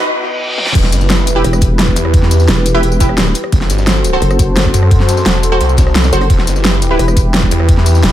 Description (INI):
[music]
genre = dark technical drum and bass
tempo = 173 BPM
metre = 4/4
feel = straight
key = E harmonic minor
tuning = A4 = 440 Hz
[part]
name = dark analog pad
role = sustained chords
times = 0.0-8.1 s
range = B3 to D#5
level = -19 LUFS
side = left 1 dB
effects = chorus, sidechain pumping
[part]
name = orchestra-hit-like synth stab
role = stabs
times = 0.0-7.0 s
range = E4 to C5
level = -18 LUFS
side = right 1 dB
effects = built-in reverb, ping-pong delay
[part]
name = riser, reverse cymbal and impact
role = sound effects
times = 0.0-2.1 s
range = none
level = -20 LUFS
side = equal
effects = none
[part]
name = dubstep drum kit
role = drums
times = 0.6-8.1 s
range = crash cymbal, hi-hat, rim click, snare drum, tambourine, toms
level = -17 LUFS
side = equal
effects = small room ambience
[part]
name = snarling distorted saw bass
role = bass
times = 0.8-8.0 s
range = E1 to F#2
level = -12 LUFS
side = equal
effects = distortion, tube saturation, sidechain pumping
[part]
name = crunchy breakbeat drum kit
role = drums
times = 0.8-8.1 s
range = hi-hat, snare drum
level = -27 LUFS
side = equal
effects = none
[part]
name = electronic kick drum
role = drums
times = 0.8-7.8 s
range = none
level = -12 LUFS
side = equal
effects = overdrive, high-pass filter on kick, small room ambience, high-pass filter on room
[part]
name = vowel-sweep wobble bass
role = bass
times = 1.4-8.1 s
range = E1 to F#1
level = -14 LUFS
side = equal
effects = chorus
[sound]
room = digital ambience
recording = high-pass filter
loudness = -9 LUFS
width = side -12 dB against mid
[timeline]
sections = 0.8-8.1 A section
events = break 0.1-0.8; reverse cymbal 0.1-0.8; drum fill 0.6; drop 0.8-8.1; impact 0.8-2.1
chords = 0.0 B; 0.8 Em; 3.5 F#dim; 6.3 Em